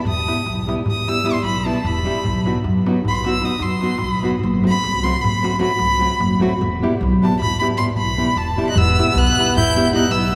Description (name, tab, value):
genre	balkan folk, Balkan wedding band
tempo	304 BPM (eighths)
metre	11/8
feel	straight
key	E harmonic minor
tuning	A4 = 440 Hz
part	darbuka	percussion	0.0-10.3 s	none	-28 LUFS	equal	none
part	clear violin	melody	0.1-10.3 s	A5 to G6	-24 LUFS	equal	none
part	upright bass	bass	0.1-10.3 s	E1 to F#2	-24 LUFS	equal	none
part	nylon-string guitar	accompaniment	0.3-10.0 s	F#3 to G4	-24 LUFS	equal	none
part	accordion	second line	8.7-10.3 s	B3 to E4	-24 LUFS	equal	none
room	wet cathedral reverb, RT60 6.1 s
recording	recorded in a church or concert hall, studio reverb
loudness	-18 LUFS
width	mono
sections	0.0-8.8 A section; 8.8-10.3 B section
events	violin solo 0.0-8.8; drum fill 7.8-8.8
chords	0.0 Em; 2.2 B; 4.4 F#dim; 6.6 Em